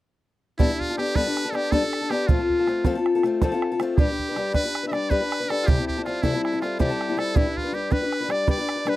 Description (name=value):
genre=celtic folk, Celtic slip jig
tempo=107 BPM (dotted quarters)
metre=9/8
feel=straight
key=G mixolydian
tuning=A4 = 440 Hz
part: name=trumpet with metal mute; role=melody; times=0.6-9.0 s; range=E4 to E5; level=-28 LUFS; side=right 2 dB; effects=none
part: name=picked steel-string acoustic guitar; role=accompaniment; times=0.6-9.0 s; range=C3 to B4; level=-24 LUFS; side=left 3 dB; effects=none
part: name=bodhran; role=percussion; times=0.6-8.9 s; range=none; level=-23 LUFS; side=right 2 dB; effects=none
room=little or no reverb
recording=dry, close 1970s-style studio recording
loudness=-21 LUFS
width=side -15 dB against mid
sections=0.6-9.0 A section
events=none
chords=0.6 Gadd9; 2.3 F; 4.0 G; 5.7 C6; 7.4 G